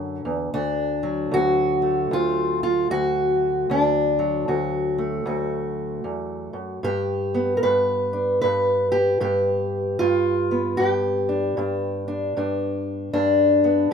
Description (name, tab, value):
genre	acoustic country blues, solo or duo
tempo	76 BPM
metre	4/4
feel	swing 63% on 8ths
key	D major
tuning	A4 = 441 Hz
part	fingerpicked steel-string acoustic guitar	solo	0.0-13.9 s	D2 to B4	-20 LUFS	equal	none
room	light reverb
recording	minimal, uncompressed stereo recording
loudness	-20 LUFS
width	side -7 dB against mid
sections	0.0-13.9 A section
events	none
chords	0.0 N.C.; 0.6 D; 6.8 G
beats	| 0.55 1.34 2.12 2.91 | 3.70 4.48 5.27 6.05 | 6.84 7.63 8.41 9.20 | 9.99 10.77 11.56 12.34 | 13.13 13.92